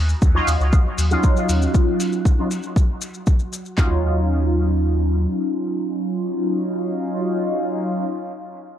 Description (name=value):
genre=dub techno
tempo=118 BPM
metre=4/4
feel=straight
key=Eb minor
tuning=A4 = 439 Hz
part: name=soft dub sub bass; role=bass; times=0.0-5.3 s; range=Db2 to Eb2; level=-19 LUFS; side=equal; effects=sidechain pumping
part: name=wind-like tuned noise texture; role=texture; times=0.2-3.8 s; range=Gb3 to Gb4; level=-35 LUFS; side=right 1 dB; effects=built-in reverb, sidechain pumping
part: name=maracas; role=percussion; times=0.1-3.8 s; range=none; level=-32 LUFS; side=left 4 dB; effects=none
part: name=deep house drum kit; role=drums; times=0.2-3.9 s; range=handclaps, kick drum, toms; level=-16 LUFS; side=equal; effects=overdrive
part: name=resonant sweep polysynth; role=stabs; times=0.3-8.0 s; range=Gb3 to F4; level=-22 LUFS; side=equal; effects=chorus, phaser, sidechain pumping, dub echo
part: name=electronic hi-hat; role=drums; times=0.5-3.6 s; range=none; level=-34 LUFS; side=left 1 dB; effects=overdrive, low-pass filter on snare, low-pass filter on hats
room=light reverb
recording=dark, warm production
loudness=-18 LUFS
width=side -10 dB against mid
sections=0.0-3.8 A section; 3.8-7.8 B section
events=filter sweep on drum 0.0-3.8; filter sweep on analog polysynth 0.0-3.8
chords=0.0 Ebm9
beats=0.22 0.73 1.24 | 1.74 2.25 2.76 3.27 | 3.78 4.29 4.79 5.30 | 5.81 6.32 6.83 7.34